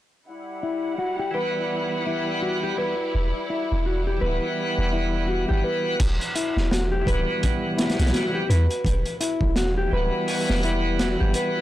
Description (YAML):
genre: trip hop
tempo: 84 BPM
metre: 4/4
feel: swing 58% on 16ths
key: E minor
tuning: A4 = 438 Hz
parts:
  - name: clear studio violin section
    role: sustained chords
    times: 0.3-6.0 s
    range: G3 to F#5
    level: -32 LUFS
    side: equal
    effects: low-pass filter
  - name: mellow electric guitar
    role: arpeggios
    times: 0.6-11.6 s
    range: E4 to B4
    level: -27 LUFS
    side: left 2 dB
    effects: low-pass filter, tape echo
  - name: bright tonewheel organ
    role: accompaniment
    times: 1.3-11.6 s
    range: E3 to F#5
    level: -28 LUFS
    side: right 1 dB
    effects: overdrive, slow rotary speaker, harmonic tremolo, low-pass filter, tape echo
  - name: soft 808-style bass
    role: bass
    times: 3.1-11.3 s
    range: D1 to E2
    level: -23 LUFS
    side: equal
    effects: transformer saturation
  - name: crunchy breakbeat drum kit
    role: drums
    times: 6.0-11.5 s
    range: crash cymbal, hi-hat, kick drum, snare drum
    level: -26 LUFS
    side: equal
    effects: none
room: light reverb, studio reverb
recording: blown-out, overdriven recording, overdrive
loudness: -21 LUFS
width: side -14 dB against mid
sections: 0.3-6.0 A section; 6.0-11.6 B section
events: filter sweep on clean electric guitar 0.3-6.0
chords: 0.3 Emadd9